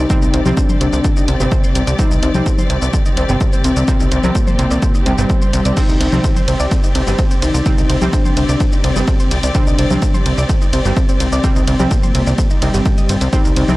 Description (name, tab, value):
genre	melodic techno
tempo	127 BPM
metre	4/4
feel	straight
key	C minor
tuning	A4 = 440 Hz
part	soft octave-layered synth lead	melody	0.0-13.8 s	G3 to Eb4	-22 LUFS	left 2 dB	chorus, tremolo, sidechain pumping, tape echo
part	dark symphonic string section	sustained chords	0.0-13.8 s	Eb3 to D5	-25 LUFS	left 1 dB	sidechain pumping
part	soft round pluck	arpeggios	0.0-13.8 s	C4 to Eb6	-25 LUFS	equal	chorus, sidechain pumping, tape echo
part	synth brass stab	stabs	0.0-13.8 s	C3 to C4	-24 LUFS	right 3 dB	chorus, sidechain pumping, tape echo
part	plucky analog bass	bass	0.0-13.8 s	G1 to C2	-17 LUFS	equal	sidechain pumping
part	analog drone	drone	0.0-13.8 s	C3 to G3	-32 LUFS	left 1 dB	none
part	electronic kick drum	drums	0.1-13.4 s	none	-16 LUFS	equal	none
part	punchy analog drum machine	drums	0.1-13.8 s	congas, crash cymbal, hi-hat, ride cymbal, shaker	-23 LUFS	left 2 dB	none
room	digital ambience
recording	dry, gritty hardware recording, transformer saturation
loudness	-12 LUFS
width	side -19 dB against mid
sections	0.0-13.8 A section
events	none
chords	0.0 Cmadd9